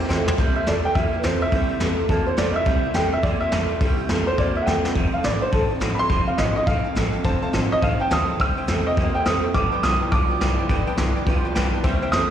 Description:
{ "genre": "rockabilly", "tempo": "209 BPM", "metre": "4/4", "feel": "swing 62% on 8ths", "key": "C mixolydian", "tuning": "A4 = 440 Hz", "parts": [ { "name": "dark upright piano", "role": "melody", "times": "0.0-12.3 s", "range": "A4 to E6", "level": "-24 LUFS", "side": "equal", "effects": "slapback echo" }, { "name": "picked steel-string acoustic guitar", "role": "accompaniment", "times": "0.0-12.3 s", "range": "G2 to A4", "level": "-30 LUFS", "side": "left 4 dB", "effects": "slapback echo" }, { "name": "warm upright piano", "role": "accompaniment", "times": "0.0-0.3, 7.2-12.2 s", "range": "B4 to A5", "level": "-30 LUFS", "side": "left 2 dB", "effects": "slapback echo" }, { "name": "electric guitar through a small old amp", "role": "riff", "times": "0.0-12.3 s", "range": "F2 to Bb3", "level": "-26 LUFS", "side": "right 3 dB", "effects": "ensemble chorus, slapback echo" }, { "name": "upright bass", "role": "bass", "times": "0.0-12.2 s", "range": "F1 to E2", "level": "-25 LUFS", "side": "equal", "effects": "none" }, { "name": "vintage brush drum kit", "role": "drums", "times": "0.1-12.2 s", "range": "hi-hat, kick drum, snare drum, toms", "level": "-25 LUFS", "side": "equal", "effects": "none" } ], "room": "small room ambience", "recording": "live gig heard through the venue's PA, recital hall reverb", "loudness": "-19 LUFS", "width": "side -10 dB against mid", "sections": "0.4-12.3 A section", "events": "upright piano fill 0.0-0.4; drum fill 0.1, 4.7; upright piano solo 0.4-12.3", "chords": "0.4 C7; 5.0 F7; 8.4 C7; 9.5 G7" }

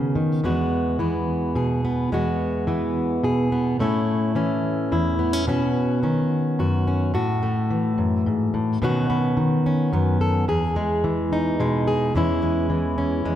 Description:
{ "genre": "folk", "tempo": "72 BPM (dotted quarters)", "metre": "6/8", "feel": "straight", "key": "E major", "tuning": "A4 = 440 Hz", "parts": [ { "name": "fingerpicked plugged-in steel-string acoustic guitar", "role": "solo", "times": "0.0-13.4 s", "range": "E2 to A4", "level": "-20 LUFS", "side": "equal", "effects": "none" } ], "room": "moderate concert hall reverb, RT60 2.1 s", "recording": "none", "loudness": "-20 LUFS", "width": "side -11 dB against mid", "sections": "0.0-7.1 A section; 7.1-13.4 B section", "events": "none", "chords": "0.4 Eadd9; 3.8 A; 5.5 Badd9; 7.1 A5; 8.8 Badd9; 10.5 Emaj7; 12.1 C#m/E" }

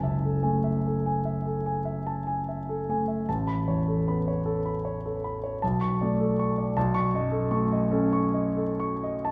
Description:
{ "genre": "classical, impressionist solo piano", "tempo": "44-54 BPM (dotted quarters)", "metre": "9/8", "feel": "rubato", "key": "F# minor", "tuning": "A4 = 440 Hz", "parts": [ { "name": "warm concert grand piano", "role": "solo", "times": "0.0-9.3 s", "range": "F#1 to C#6", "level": "-27 LUFS", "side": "equal", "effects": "none" } ], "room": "wet recital hall reverb, RT60 1.4 s", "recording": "recorded in a church or concert hall", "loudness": "-27 LUFS", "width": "mono", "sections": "0.0-9.3 A section", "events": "none", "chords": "0.0 F#m9; 3.3 Aadd9; 5.6 Bm9; 6.8 B9" }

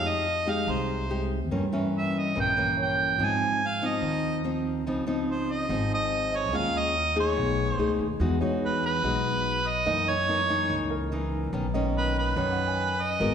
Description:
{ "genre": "bossa nova", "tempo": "144 BPM", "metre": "4/4", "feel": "straight", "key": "F minor", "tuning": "A4 = 440 Hz", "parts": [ { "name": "mellow harmonica", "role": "melody", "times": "0.0-13.3 s", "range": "B4 to Ab5", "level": "-27 LUFS", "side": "right 2 dB", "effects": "none" }, { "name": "nylon-string guitar", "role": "accompaniment", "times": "0.0-13.3 s", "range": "F#2 to A#4", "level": "-29 LUFS", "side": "left 2 dB", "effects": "none" }, { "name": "warm concert grand piano", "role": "accompaniment", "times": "0.0-3.4, 6.3-13.3 s", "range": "A#4 to G#5", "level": "-36 LUFS", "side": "right 4 dB", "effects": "none" }, { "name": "upright bass", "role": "bass", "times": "0.0-13.3 s", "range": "Ab1 to Ab2", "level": "-31 LUFS", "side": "equal", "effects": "none" } ], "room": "wet scoring stage reverb, RT60 1.5 s", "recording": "recorded in a church or concert hall", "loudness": "-24 LUFS", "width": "side -8 dB against mid", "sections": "0.0-8.2 A section; 8.2-13.3 B section", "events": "none", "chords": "0.0 Fm9; 1.5 Bbdim7; 3.2 Ab6; 4.9 Dbmaj9; 6.5 Eb9sus4; 7.4 B13; 8.2 Emaj9; 9.9 F#6; 11.5 Bmaj9" }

